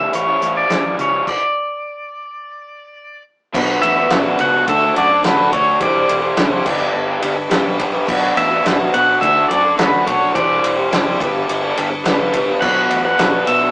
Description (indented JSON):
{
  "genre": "folk rock and heartland rock",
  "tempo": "106 BPM",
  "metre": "4/4",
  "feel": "straight",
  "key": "unclear",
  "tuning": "A4 = 441 Hz",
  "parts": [
    { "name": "pedal steel guitar", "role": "melody", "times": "0.0-13.7 s", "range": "B4 to F#5", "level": "-17 LUFS", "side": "equal", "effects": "none" },
    { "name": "picked steel-string acoustic guitar", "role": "accompaniment", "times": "0.0-13.7 s", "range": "A2 to C#5", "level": "-22 LUFS", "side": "equal", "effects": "none" },
    { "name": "raw garage guitar", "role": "riff", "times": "0.0-13.7 s", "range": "G2 to G4", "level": "-19 LUFS", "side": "equal", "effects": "overdrive" },
    { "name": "fingered electric bass", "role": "bass", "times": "0.0-13.7 s", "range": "E1 to B2", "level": "-32 LUFS", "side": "equal", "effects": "none" },
    { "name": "natural country drum kit", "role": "drums", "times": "0.1-13.6 s", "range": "crash cymbal, hi-hat, kick drum, ride cymbal, snare drum", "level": "-19 LUFS", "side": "equal", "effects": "none" }
  ],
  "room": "moderate studio reverb, RT60 0.6 s",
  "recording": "rough rehearsal-room recording, tube saturation, small speaker sound",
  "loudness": "-13 LUFS",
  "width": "side -24 dB against mid",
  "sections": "0.0-3.5 A section; 3.5-13.7 B section",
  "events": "stop 1.3-3.5",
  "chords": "0.0 A7; 1.3 N.C.; 3.5 Bm; 4.7 D; 5.8 Cadd9/E; 6.7 G; 8.1 Bm; 9.2 D; 10.4 Cadd9/E; 11.2 G; 12.6 Bm"
}